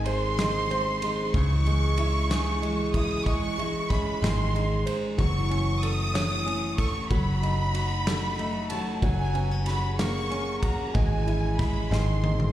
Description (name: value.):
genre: six-eight pop ballad.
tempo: 62 BPM (dotted quarters).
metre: 6/8.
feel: straight.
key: C# minor.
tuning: A4 = 440 Hz.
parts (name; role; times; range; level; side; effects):
warm symphonic violin section; second line; 0.0-12.5 s; G#5 to D#6; -31 LUFS; equal; slapback echo.
warm concert grand piano; accompaniment; 0.0-12.5 s; C#3 to C#5; -33 LUFS; right 3 dB; slapback echo.
picked steel-string acoustic guitar; arpeggios; 0.0-12.5 s; D#3 to G#4; -31 LUFS; left 1 dB; slapback echo.
vintage muted fingered electric bass; bass; 0.0-12.5 s; F#1 to C#2; -27 LUFS; equal; none.
loose indie drum kit; drums; 0.1-12.5 s; kick drum, ride cymbal, snare drum, toms; -31 LUFS; equal; none.
room: light reverb.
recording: live gig heard through the venue's PA, recital hall reverb.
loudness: -24 LUFS.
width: side -13 dB against mid.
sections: 0.0-12.5 A section.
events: drum fill 11.9-12.5.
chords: 0.0 G#; 1.3 C#m; 3.3 C#m/G#; 4.2 G#; 5.2 F#m7; 7.1 D#dim/F#; 9.0 F#add9; 11.0 C#m/G#; 11.9 G#.